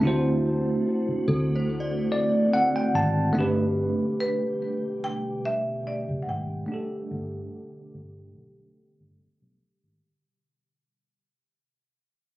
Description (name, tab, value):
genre	contemporary R&B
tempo	72 BPM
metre	4/4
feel	swing 54% on 16ths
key	unclear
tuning	A4 = 440 Hz
part	marimba with medium hard mallets	melody	0.0-9.2 s	B4 to A5	-32 LUFS	equal	tape echo
part	bell-like tine electric piano	accompaniment	0.0-10.1 s	A3 to A5	-26 LUFS	equal	medium stereo tremolo
part	glassy FM pad	sustained chords	0.0-10.0 s	B2 to G4	-32 LUFS	equal	ensemble chorus, built-in reverb, phaser
part	vintage muted fingered electric bass	bass	0.0-10.0 s	F#1 to D2	-28 LUFS	equal	none
part	synth chime	texture	1.3-4.2 s	A4 to D5	-36 LUFS	equal	ensemble chorus, tape echo
room	light reverb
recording	recorded on a phone in the room, studio ambience, low-pass filter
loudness	-23 LUFS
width	side -17 dB against mid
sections	0.0-3.4 A section; 3.4-10.0 B section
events	tine electric piano fill 1.7-3.4; fade-out 3.4-10.0; filter sweep 3.4-10.0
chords	0.0 D7; 3.4 G